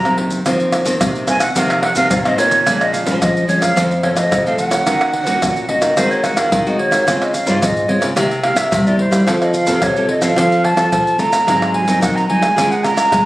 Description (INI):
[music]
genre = samba and choro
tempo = 109 BPM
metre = 4/4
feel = straight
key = unclear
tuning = A4 = 438 Hz
[part]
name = breathy mellow silver concert flute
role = melody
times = 0.0-13.3 s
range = C5 to Bb5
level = -16 LUFS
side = right 1 dB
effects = none
[part]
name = nylon-string guitar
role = accompaniment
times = 0.0-13.3 s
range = F2 to Bb4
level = -19 LUFS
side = equal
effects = none
[part]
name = nylon-string guitar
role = bass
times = 0.0-13.3 s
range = F2 to A3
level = -20 LUFS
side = equal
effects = none
[part]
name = maracas, pandeiro, tamborim and surdo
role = percussion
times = 0.1-13.3 s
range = none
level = -20 LUFS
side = equal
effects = none
[sound]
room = moderate studio reverb, RT60 0.8 s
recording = recorded on a phone in the room, studio reverb, compression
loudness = -13 LUFS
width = side -17 dB against mid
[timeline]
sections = 0.0-2.7 A section; 2.7-13.3 B section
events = none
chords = 0.5 F7sus4; 2.7 Bbm7; 3.8 F; 4.9 Ebm7; 6.0 Ab7/Eb; 7.1 Dbmaj7; 8.2 C7; 9.3 F; 11.5 Ab7; 12.6 Db6/Ab